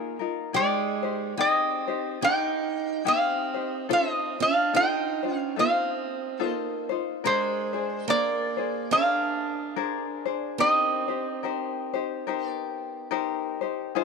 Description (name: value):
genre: Hawaiian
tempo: 72 BPM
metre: 4/4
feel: swing 59% on 8ths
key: Eb major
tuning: A4 = 440 Hz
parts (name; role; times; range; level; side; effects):
- metal-body resonator slide guitar; melody; 0.0-13.6 s; C5 to G5; -25 LUFS; right 1 dB; none
- picked steel-string acoustic guitar; second line; 0.0-13.6 s; Ab3 to Eb4; -32 LUFS; right 14 dB; none
- tenor ukulele; accompaniment; 0.0-14.0 s; D4 to C5; -29 LUFS; left 11 dB; none
room: moderate plate reverb, RT60 3.4 s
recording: 1960s-style stereo with parts hard left and right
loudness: -24 LUFS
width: side -4 dB against mid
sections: 0.0-13.9 A section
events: none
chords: 0.0 Bb7sus4; 0.5 Abmaj7; 3.9 F7; 7.3 Bb9; 10.6 Eb6